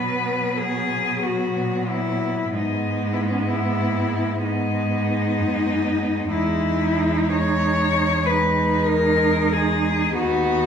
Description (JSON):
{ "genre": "classical, lyrical piece for cello ensemble", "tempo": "63 BPM", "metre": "4/4", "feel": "rubato", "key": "unclear", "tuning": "A4 = 440 Hz", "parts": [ { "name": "rich cello", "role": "melody", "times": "0.0-10.7 s", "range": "C#4 to C#5", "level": "-22 LUFS", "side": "left 4 dB", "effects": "none" }, { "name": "rich cello", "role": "second line", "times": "0.0-10.7 s", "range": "B3 to D#4", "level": "-26 LUFS", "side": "right 7 dB", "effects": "none" }, { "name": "warm cello", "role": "accompaniment", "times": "0.0-10.7 s", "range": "F#3 to B3", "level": "-27 LUFS", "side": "equal", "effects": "none" }, { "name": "rich cello", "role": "bass", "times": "0.0-10.7 s", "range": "D#2 to B2", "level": "-27 LUFS", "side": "right 2 dB", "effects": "none" } ], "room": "wet recital hall reverb, RT60 1.6 s", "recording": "recorded in a church or concert hall", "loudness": "-19 LUFS", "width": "side -7 dB against mid", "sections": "0.0-10.7 A section", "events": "none", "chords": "0.0 B5; 2.5 G#m; 6.3 Emaj7" }